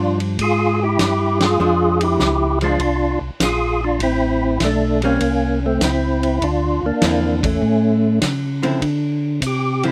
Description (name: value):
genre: soul jazz organ trio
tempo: 100 BPM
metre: 4/4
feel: swing 69% on 8ths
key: D minor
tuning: A4 = 439 Hz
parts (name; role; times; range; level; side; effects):
- percussive tonewheel organ; melody; 0.0-9.9 s; A3 to Ab4; -20 LUFS; equal; slow rotary speaker, overdrive, chorus vibrato
- archtop guitar, miked and amplified; accompaniment; 0.0-9.9 s; D3 to E4; -25 LUFS; equal; none
- mellow tonewheel organ; bass; 0.0-9.9 s; A1 to D3; -23 LUFS; equal; slow rotary speaker
- warm soul drum kit; drums; 0.2-9.9 s; hi-hat, kick drum, ride cymbal, snare drum; -28 LUFS; equal; none
room: light reverb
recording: none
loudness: -18 LUFS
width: mono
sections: 0.0-8.8 A section; 8.8-9.9 B section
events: band accent 1.3-1.6; tonewheel organ solo 8.8-9.9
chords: 0.0 Bb7; 4.0 A(#9); 6.4 Dm9; 7.6 A; 8.8 D7(no3)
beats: 0.40 1.00 | 1.60 2.21 2.81 3.41 | 4.01 4.61 5.22 5.82 | 6.42 7.02 7.62 8.23 | 8.83 9.43